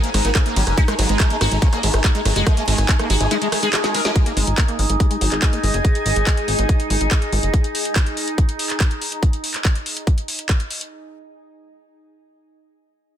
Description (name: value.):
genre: psychedelic trance.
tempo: 142 BPM.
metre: 4/4.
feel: straight.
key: unclear.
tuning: A4 = 439 Hz.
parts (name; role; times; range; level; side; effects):
sitar; melody; 0.0-4.1 s; G#2 to A#4; -25 LUFS; left 1 dB; phaser, sidechain pumping, digital delay.
overtone-sweeping drone; sustained chords; 0.0-9.2 s; D#4; -28 LUFS; right 1 dB; chorus, built-in reverb, sidechain pumping.
liquid acid bass; riff; 0.0-5.7 s; F#3 to A#3; -27 LUFS; moving between left 2 dB and right 4 dB; chorus, auto-pan, sidechain pumping, digital delay.
drum and bass drum kit; drums; 0.0-10.9 s; handclaps, hi-hat, ride cymbal, rim click, snare drum; -23 LUFS; equal; none.
granular cloud pad; texture; 0.0-7.5 s; G#4 to G#5; -28 LUFS; equal; built-in reverb, sidechain pumping.
plucky analog bass; bass; 0.1-7.5 s; F#1 to G#1; -19 LUFS; equal; none.
electronic kick drum; drums; 0.4-10.6 s; none; -17 LUFS; equal; none.
vowel-sweep wobble bass; second line; 1.0-3.4 s; F#3 to D#4; -35 LUFS; left 4 dB; none.
room: light reverb, digital ambience.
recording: dense, heavily limited modern master.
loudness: -16 LUFS.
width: side -10 dB against mid.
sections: 0.0-4.2 A section; 4.2-10.9 B section.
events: drop 0.0-4.2; drum fill 3.7-4.2; band accent 4.0; filter sweep on acid bass 4.2-5.8.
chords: 0.0 G#5.